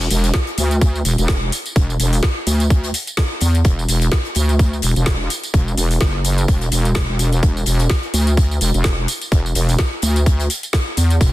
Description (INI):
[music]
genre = bass house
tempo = 127 BPM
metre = 4/4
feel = swing 56% on 16ths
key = unclear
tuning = A4 = 440 Hz
[part]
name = wobble bass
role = bass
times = 0.0-11.3 s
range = E1 to E2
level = -16 LUFS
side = equal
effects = chorus, tube saturation, sidechain pumping
[part]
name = garage drum kit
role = drums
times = 0.0-11.3 s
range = hi-hat, snare drum, tambourine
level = -23 LUFS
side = equal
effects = none
[part]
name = crisp fusion drum kit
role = drums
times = 0.1-11.3 s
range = hi-hat, snare drum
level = -31 LUFS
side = left 2 dB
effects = sidechain pumping on hats, high-pass filter on hats, high-pass filter on snare, high-pass filter on room
[part]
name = electronic kick drum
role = drums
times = 0.3-11.3 s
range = none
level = -15 LUFS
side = equal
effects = none
[sound]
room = small room ambience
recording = dense, heavily limited modern master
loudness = -15 LUFS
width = side -16 dB against mid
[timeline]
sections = 0.0-11.3 A section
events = none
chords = none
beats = 0.34 0.81 1.29 | 1.76 2.23 2.70 3.18 | 3.65 4.12 4.59 5.07 | 5.54 6.01 6.48 6.96 | 7.43 7.90 8.37 8.85 | 9.32 9.79 10.26 10.74 | 11.21